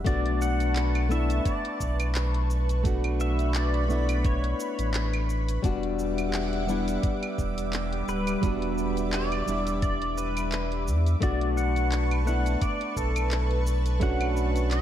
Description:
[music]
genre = sunset chillout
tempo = 86 BPM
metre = 4/4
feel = swing 56% on 16ths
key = B minor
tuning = A4 = 440 Hz
[part]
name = flamenco guitar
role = accompaniment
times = 0.0-14.8 s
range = G3 to F#4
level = -30 LUFS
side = moving between left 8 dB and right 5 dB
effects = auto-pan, analog delay
[part]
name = warm sub bass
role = bass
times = 0.0-14.8 s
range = D1 to E2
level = -27 LUFS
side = equal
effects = none
[part]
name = pedal steel guitar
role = melody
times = 0.1-14.8 s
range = A4 to F#5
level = -33 LUFS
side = equal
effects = analog chorus, analog delay
[part]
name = lush unison pad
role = sustained chords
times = 0.1-14.8 s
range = G3 to D6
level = -34 LUFS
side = equal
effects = chorus, phaser
[part]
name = electronic kick drum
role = drums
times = 0.1-14.2 s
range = none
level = -28 LUFS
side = equal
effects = none
[part]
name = smooth R&B drum kit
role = drums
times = 0.1-14.8 s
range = cabasa, claves, handclaps, hi-hat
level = -36 LUFS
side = right 1 dB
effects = none
[sound]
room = moderate plate reverb, RT60 1.9 s, digital ambience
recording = dreamy mix soaked in reverb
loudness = -24 LUFS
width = side -11 dB against mid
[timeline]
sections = 0.1-14.8 A section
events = none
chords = 0.1 Bm9; 5.6 Em9; 11.2 Bm9

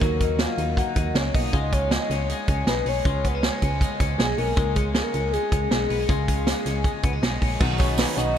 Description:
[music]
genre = jangly indie pop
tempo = 158 BPM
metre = 4/4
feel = straight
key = unclear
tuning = A4 = 440 Hz
[part]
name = soft octave-layered synth lead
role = melody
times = 0.0-8.4 s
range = Ab4 to Gb5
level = -28 LUFS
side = left 2 dB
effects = chorus, phaser, ping-pong delay
[part]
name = twelve-string electric guitar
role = arpeggios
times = 0.0-8.4 s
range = D#3 to Gb4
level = -29 LUFS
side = left 3 dB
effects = wide subtle chorus, ping-pong delay
[part]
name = solid FM bass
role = bass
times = 0.0-8.4 s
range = Bb1 to Eb2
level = -27 LUFS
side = equal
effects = none
[part]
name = vintage drum kit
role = drums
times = 0.0-8.3 s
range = crash cymbal, hi-hat, kick drum, snare drum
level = -24 LUFS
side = right 1 dB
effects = none
[part]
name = lush unison pad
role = sustained chords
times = 7.6-8.4 s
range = C#3 to D#4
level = -31 LUFS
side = right 1 dB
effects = chorus
[part]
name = tambourine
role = percussion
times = 7.6-8.3 s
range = none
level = -39 LUFS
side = right 9 dB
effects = none
[sound]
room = moderate huge ambient reverb, RT60 5.8 s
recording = dreamy mix soaked in reverb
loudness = -21 LUFS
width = side -9 dB against mid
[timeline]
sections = 0.0-7.6 A section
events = none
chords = 0.0 Ebm; 1.5 Db; 7.6 Badd9

